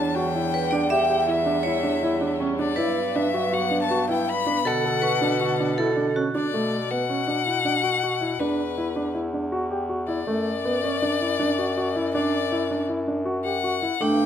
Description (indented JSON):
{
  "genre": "contemporary instrumental, chamber music in an uneven meter",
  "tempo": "160 BPM",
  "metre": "5/4",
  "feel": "straight",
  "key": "B minor",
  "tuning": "A4 = 441 Hz",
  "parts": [
    { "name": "clear violin", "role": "melody", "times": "0.0-14.3 s", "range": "B4 to B5", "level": "-27 LUFS", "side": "left 7 dB", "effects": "none" },
    { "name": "vibraphone with hard mallets", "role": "second line", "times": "0.0-6.5, 14.0-14.3 s", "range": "D4 to E5", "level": "-26 LUFS", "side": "right 4 dB", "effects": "none" },
    { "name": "rich studio string section", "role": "sustained chords", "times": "0.0-6.5, 14.0-14.3 s", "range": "D3 to A4", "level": "-32 LUFS", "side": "right 2 dB", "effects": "none" },
    { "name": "warm grand piano", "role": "arpeggios", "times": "0.0-14.2 s", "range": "A3 to A4", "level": "-26 LUFS", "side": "equal", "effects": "none" },
    { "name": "clear bass clarinet", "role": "bass", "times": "0.0-14.3 s", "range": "E2 to B2", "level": "-28 LUFS", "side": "left 1 dB", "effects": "none" }
  ],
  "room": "moderate recital hall reverb, RT60 1.4 s",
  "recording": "close, detailed microphones",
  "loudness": "-21 LUFS",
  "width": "side -9 dB against mid",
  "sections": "0.0-6.5 A section; 6.5-14.3 B section",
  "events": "none",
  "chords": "0.0 Em7; 2.8 Gmaj7; 4.7 Bm7; 6.5 Bm; 8.4 E5; 10.3 Bm/F# (rootless)"
}